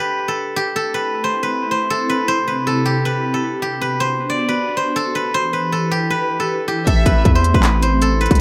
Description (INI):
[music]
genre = hip hop, trap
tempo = 157 BPM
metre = 4/4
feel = half-time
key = unclear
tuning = A4 = 440 Hz
[part]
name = steel-string zither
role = melody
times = 0.0-8.4 s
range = G4 to D5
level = -21 LUFS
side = equal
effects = analog delay
[part]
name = hollow soft pad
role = sustained chords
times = 0.8-8.4 s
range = C3 to B4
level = -25 LUFS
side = equal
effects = ensemble chorus
[part]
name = warm studio violin section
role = second line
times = 6.9-7.2 s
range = E5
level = -28 LUFS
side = equal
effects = analog delay
[part]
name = hard-hitting 808-style bass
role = bass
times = 6.9-8.4 s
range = A1 to E2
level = -19 LUFS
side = equal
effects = none
[part]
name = trap drum kit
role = drums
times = 6.9-8.4 s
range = handclaps, hi-hat, kick drum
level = -18 LUFS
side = equal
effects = none
[sound]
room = light reverb, digital ambience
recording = echo-heavy mix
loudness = -18 LUFS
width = mono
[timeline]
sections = 0.8-8.4 A section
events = stop 0.0-0.8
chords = 0.0 N.C.; 0.8 Am; 2.3 C; 3.8 Bm; 5.3 Em; 6.9 Am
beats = 0.37 | 0.76 1.14 1.52 1.90 | 2.28 2.67 3.05 3.43 | 3.81 4.19 4.58 4.96 | 5.34 5.72 6.11 6.49 | 6.87 7.25 7.63 8.02 | 8.40